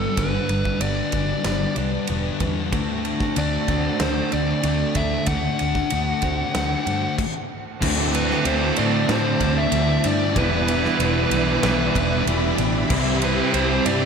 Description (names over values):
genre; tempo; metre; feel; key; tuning
rock, shoegaze and dream pop; 94 BPM; 4/4; straight; unclear; A4 = 443 Hz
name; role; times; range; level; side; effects
fuzz lead guitar; melody; 0.0-14.1 s; A4 to F#5; -27 LUFS; equal; distortion, diffuse ambient delay
picked twelve-string acoustic guitar; arpeggios; 0.0-14.1 s; E3 to G4; -32 LUFS; right 7 dB; wide subtle chorus, diffuse ambient delay
crunchy overdriven guitar; riff; 0.0-14.1 s; G2 to F#4; -27 LUFS; right 9 dB; reverse reverb
thick fuzz guitar; riff; 0.0-14.1 s; E2 to D4; -25 LUFS; left 8 dB; distortion, analog chorus
vintage muted fingered electric bass; bass; 0.0-14.1 s; E1 to A2; -26 LUFS; equal; none
big rock drum kit; drums; 0.2-14.0 s; crash cymbal, kick drum, ride cymbal, snare drum; -28 LUFS; right 1 dB; none
string machine, violas; sustained chords; 7.8-14.1 s; C4 to B5; -29 LUFS; equal; ensemble chorus
crunchy overdriven guitar; riff; 7.8-14.1 s; C3 to F#4; -26 LUFS; right 1 dB; none
room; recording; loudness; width
moderate lush hall reverb, RT60 2.7 s; dreamy mix soaked in reverb; -19 LUFS; side -6 dB against mid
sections
0.0-7.8 A section; 7.8-14.1 B section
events
stop 7.2-7.8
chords
0.0 Gmaj7; 2.7 D7; 7.8 D9sus4; 10.4 Em7; 12.9 Cmaj7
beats
| 0.18 0.82 1.45 2.09 | 2.73 3.36 4.00 4.64 | 5.27 5.91 6.54 7.18 | 7.82 8.45 9.09 9.72 | 10.36 10.99 11.63 12.27 | 12.90 13.54